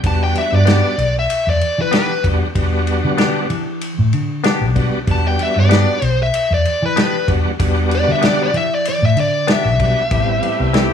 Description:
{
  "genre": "straight-eighth soul blues",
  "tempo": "95 BPM",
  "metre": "4/4",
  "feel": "swing 54% on 16ths",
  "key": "E minor",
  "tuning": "A4 = 440 Hz",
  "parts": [
    { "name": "bright tonewheel organ", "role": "accompaniment", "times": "0.0-10.9 s", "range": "G3 to F#4", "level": "-21 LUFS", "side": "right 2 dB", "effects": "slow rotary speaker, overdrive, chorus vibrato" },
    { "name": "vintage muted fingered electric bass", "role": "bass", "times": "0.0-10.9 s", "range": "A1 to E3", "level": "-18 LUFS", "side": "left 1 dB", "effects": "none" },
    { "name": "warm soul drum kit", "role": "drums", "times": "0.0-10.9 s", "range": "kick drum, ride cymbal, snare drum", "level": "-22 LUFS", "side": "left 1 dB", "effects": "none" },
    { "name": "dark smooth lead guitar", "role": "melody", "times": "0.1-10.9 s", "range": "B4 to A5", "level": "-18 LUFS", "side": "left 2 dB", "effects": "overdrive" },
    { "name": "direct-recorded clean electric guitar", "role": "stabs", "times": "0.7-10.9 s", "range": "E3 to G4", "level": "-22 LUFS", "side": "left 4 dB", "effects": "analog chorus, analog delay" },
    { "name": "bright horn section", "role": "sustained chords", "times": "10.1-10.9 s", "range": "A3 to G4", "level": "-28 LUFS", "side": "left 4 dB", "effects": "none" }
  ],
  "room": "light reverb",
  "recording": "studio ambience",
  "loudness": "-14 LUFS",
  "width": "side -8 dB against mid",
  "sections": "0.0-10.9 A section",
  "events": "lead electric guitar solo 0.0-10.9",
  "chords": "0.0 Em7; 10.1 Am7",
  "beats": "| 0.04 0.67 1.30 1.93 | 2.56 3.19 3.81 4.45 | 5.08 5.70 6.33 6.96 | 7.59 8.22 8.85 9.48 | 10.11 10.74"
}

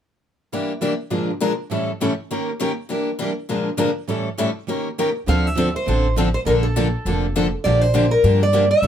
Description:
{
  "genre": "acoustic string swing (jazz manouche)",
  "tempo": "202 BPM",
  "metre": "4/4",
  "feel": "swing 57% on 8ths",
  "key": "D minor",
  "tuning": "A4 = 440 Hz",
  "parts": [
    { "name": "picked steel-string acoustic guitar", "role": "accompaniment", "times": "0.5-8.9 s", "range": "A2 to Bb4", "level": "-23 LUFS", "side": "left 4 dB", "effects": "none" },
    { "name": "picked steel-string acoustic guitar", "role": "accompaniment", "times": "0.5-8.9 s", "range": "A2 to Bb4", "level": "-25 LUFS", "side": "right 5 dB", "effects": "none" },
    { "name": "picked steel-string acoustic guitar", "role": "melody", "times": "5.3-8.9 s", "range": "A4 to F5", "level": "-20 LUFS", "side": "equal", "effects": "none" },
    { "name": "upright bass", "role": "bass", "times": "5.3-8.9 s", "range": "F1 to G2", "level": "-20 LUFS", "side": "equal", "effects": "none" }
  ],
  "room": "moderate studio ambience, RT60 0.5 s",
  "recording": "band playing live in one room",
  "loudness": "-18 LUFS",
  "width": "side -9 dB against mid",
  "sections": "0.5-5.3 A section; 5.3-8.9 B section",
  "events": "none",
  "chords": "0.5 Em7b5; 1.1 Bb7; 1.7 A7; 2.3 Eb7; 2.9 Em7b5; 3.5 Bb7; 4.1 A7; 4.7 Eb7; 5.3 Dm9; 6.5 Bbmaj7; 7.7 Gm7/Bb",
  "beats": "| 0.52 0.82 1.12 1.42 | 1.72 2.01 2.31 2.61 | 2.90 3.20 3.50 3.80 | 4.09 4.39 4.69 4.99 | 5.28 5.58 5.88 6.17 | 6.47 6.76 7.06 7.36 | 7.65 7.95 8.24 8.54 | 8.84"
}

